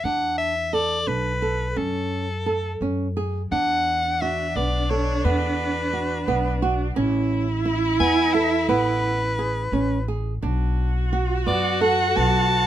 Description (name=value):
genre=contemporary instrumental, chamber music in an uneven meter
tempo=174 BPM (eighths)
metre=5/8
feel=straight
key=unclear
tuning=A4 = 440 Hz
part: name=edgy soprano saxophone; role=melody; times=0.0-12.7 s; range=A4 to A5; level=-24 LUFS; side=left 2 dB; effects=none
part: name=upright bass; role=bass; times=0.0-12.7 s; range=A1 to F#2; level=-26 LUFS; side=equal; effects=none
part: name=flamenco guitar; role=arpeggios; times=0.1-12.7 s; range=B3 to A4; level=-26 LUFS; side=right 3 dB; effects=none
part: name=warm cello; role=second line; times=3.5-12.7 s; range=D4 to F#4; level=-25 LUFS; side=right 3 dB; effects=none
room=little or no reverb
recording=close, detailed microphones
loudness=-20 LUFS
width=side -11 dB against mid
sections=0.0-3.5 A section; 3.5-12.7 B section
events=none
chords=0.0 E7sus4; 1.8 F#m; 3.5 E7sus2; 7.0 Amaj9; 10.4 Bm7